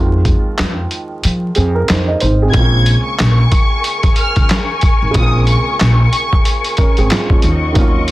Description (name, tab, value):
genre	hip hop, boom-bap hip-hop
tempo	92 BPM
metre	4/4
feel	swing 59% on 16ths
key	Bb minor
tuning	A4 = 440 Hz
part	dark upright piano	accompaniment	0.0-8.1 s	Db3 to Eb5	-20 LUFS	right 3 dB	high-pass filter, low-pass filter
part	upright bass	bass	0.0-8.1 s	Ab1 to F3	-14 LUFS	equal	none
part	boom bap sampler-style drum kit	drums	0.3-8.1 s	handclaps, hi-hat, kick drum, snare drum	-14 LUFS	equal	soft clipping on snare
part	warm symphonic violin section	melody	2.5-6.3 s	Db6 to Ab6	-20 LUFS	equal	high-pass filter, low-pass filter, digital delay
part	warm studio string section	sustained chords	2.5-8.1 s	Gb3 to Db6	-21 LUFS	left 4 dB	high-pass filter, low-pass filter
room	little or no reverb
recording	dense, heavily limited modern master, vinyl crackle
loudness	-11 LUFS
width	side -17 dB against mid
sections	0.0-2.5 A section; 2.5-8.1 B section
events	kick muted 1.2-2.5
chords	0.0 Fm7; 2.5 Bbm7; 7.4 Ebm7